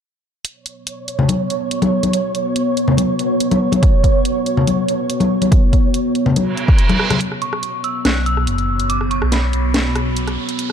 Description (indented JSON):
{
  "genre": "deep dubstep",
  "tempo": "142 BPM",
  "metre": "4/4",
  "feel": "half-time",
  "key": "unclear",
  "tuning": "A4 = 438 Hz",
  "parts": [
    { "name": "deep dark ambient pad", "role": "sustained chords", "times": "1.3-10.7 s", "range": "B3 to D5", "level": "-22 LUFS", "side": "equal", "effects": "chorus, built-in reverb" },
    { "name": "garage drum kit", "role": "drums", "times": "0.4-10.7 s", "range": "hi-hat, rim click, snare drum", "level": "-22 LUFS", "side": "equal", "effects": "none" },
    { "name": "flickering grainy texture", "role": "texture", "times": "0.9-7.2 s", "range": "C#5", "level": "-24 LUFS", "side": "right 6 dB", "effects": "built-in reverb" },
    { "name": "congas", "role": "percussion", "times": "1.2-7.2 s", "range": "none", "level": "-19 LUFS", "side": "left 3 dB", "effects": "none" },
    { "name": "electronic kick drum", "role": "drums", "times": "3.8-6.8 s", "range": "none", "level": "-13 LUFS", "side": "equal", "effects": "overdrive" },
    { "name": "reverse cymbal and riser", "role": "sound effects", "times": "6.5-10.7 s", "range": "none", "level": "-26 LUFS", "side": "right 4 dB", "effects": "none" },
    { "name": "dark detuned synth bell", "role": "melody", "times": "7.4-10.1 s", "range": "B5 to F#6", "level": "-23 LUFS", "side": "right 1 dB", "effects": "chorus, phaser, low-pass filter, dub echo" },
    { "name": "dark detuned saw bass", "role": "bass", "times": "8.1-10.4 s", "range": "F#1 to B1", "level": "-19 LUFS", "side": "equal", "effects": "tube saturation" }
  ],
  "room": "light reverb",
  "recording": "dark, warm production, high-pass filter",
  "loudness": "-14 LUFS",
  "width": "side -8 dB against mid",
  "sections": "0.4-7.2 A section; 7.2-10.7 B section",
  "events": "reverse cymbal 6.5-7.2; kick drops out 6.8-7.2; drum fill 6.9-7.2; build-up 7.2-10.7; riser 7.2-10.7",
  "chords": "0.4 Bsus2",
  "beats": "| 0.45 0.87 1.29 1.71 | 2.14 2.56 2.98 3.40 | 3.83 4.25 4.67 5.09 | 5.52 5.94 6.36 6.78 | 7.21 7.63 8.05 8.47 | 8.90 9.32 9.74 10.16 | 10.59"
}